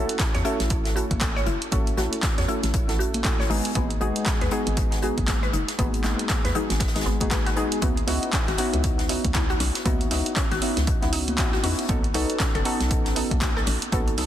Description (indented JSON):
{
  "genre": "deep house",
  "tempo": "118 BPM",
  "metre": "4/4",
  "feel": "swing 60% on 16ths",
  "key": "C# minor",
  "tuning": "A4 = 445 Hz",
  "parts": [
    { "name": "mallet-like synth pluck", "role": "arpeggios", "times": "0.0-14.3 s", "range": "B3 to C#5", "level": "-32 LUFS", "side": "left 2 dB", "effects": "phaser, lush chorus, sidechain pumping, dub echo" },
    { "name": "warm analog keys", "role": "stabs", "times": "0.0-14.3 s", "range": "G#3 to A4", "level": "-28 LUFS", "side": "equal", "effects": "chorus, vintage 12-bit sampler grit, sidechain pumping, dub echo" },
    { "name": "hollow knocking FM bass", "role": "bass", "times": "0.0-14.3 s", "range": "F#1 to E2", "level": "-28 LUFS", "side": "equal", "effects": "sidechain pumping" },
    { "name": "punchy analog drum machine", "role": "drums", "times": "0.1-14.3 s", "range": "handclaps, hi-hat", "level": "-29 LUFS", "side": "right 1 dB", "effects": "none" },
    { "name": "electronic kick drum", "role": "drums", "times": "0.2-14.0 s", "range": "none", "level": "-26 LUFS", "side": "equal", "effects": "none" },
    { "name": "jazz brush drum kit", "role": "drums", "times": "0.2-14.3 s", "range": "hi-hat, snare drum", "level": "-35 LUFS", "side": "left 2 dB", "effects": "high-pass filter on hats, soft clipping on snare, high-pass filter on snare, high-pass filter on room" },
    { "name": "congas", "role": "percussion", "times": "1.1-14.0 s", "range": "none", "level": "-36 LUFS", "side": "left 2 dB", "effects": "none" }
  ],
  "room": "light reverb, small room ambience",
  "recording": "dense, heavily limited modern master",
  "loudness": "-21 LUFS",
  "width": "side -11 dB against mid",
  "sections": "0.0-14.3 A section",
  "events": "none",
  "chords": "0.0 A6; 3.5 G#m7; 7.8 C#m11; 11.9 B9"
}